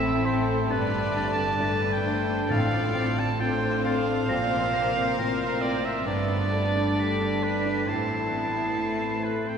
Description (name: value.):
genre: cinematic.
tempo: 67 BPM.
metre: 4/4.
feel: rubato.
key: unclear.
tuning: A4 = 440 Hz.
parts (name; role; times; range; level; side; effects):
clear cor anglais; second line; 0.0-9.6 s; B4 to A5; -29 LUFS; right 3 dB; none.
warm studio violin section; second line; 0.0-9.6 s; E4 to D5; -37 LUFS; left 3 dB; none.
clear grand piano; accompaniment; 0.0-9.6 s; G2 to D5; -33 LUFS; left 2 dB; none.
rich studio viola section; accompaniment; 0.0-9.6 s; G3 to Bb4; -34 LUFS; right 1 dB; none.
mellow French horn section; sustained chords; 0.0-9.6 s; A3 to Bb4; -34 LUFS; left 2 dB; none.
concert harp; arpeggios; 0.0-9.6 s; G2 to E5; -32 LUFS; left 4 dB; none.
dark chamber cello section; bass; 0.0-9.6 s; G2 to Bb2; -34 LUFS; right 3 dB; none.
warm symphonic double bass section; bass; 0.0-9.6 s; G1 to Bb1; -34 LUFS; right 3 dB; none.
timpani; percussion; 0.0-3.8 s; A2; -35 LUFS; right 1 dB; none.
warm clarinet; second line; 0.2-9.6 s; C4 to E4; -35 LUFS; left 1 dB; none.
mellow hollow concert flute; second line; 0.3-9.6 s; A6 to C7; -36 LUFS; left 1 dB; none.
rich studio violin section; melody; 0.7-9.6 s; A4 to D5; -37 LUFS; left 4 dB; none.
room: wet church reverb, RT60 3.4 s.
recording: minimal, uncompressed stereo recording.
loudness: -23 LUFS.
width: side -7 dB against mid.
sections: 0.0-9.6 A section.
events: none.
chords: 0.0 Am; 0.7 Gsus2; 2.5 F/A; 4.3 Bbsus2; 6.1 Gsus2; 7.9 Amadd9.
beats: 0.69 1.60 | 2.50 3.39 4.28 5.17 | 6.07 6.98 7.88 8.78.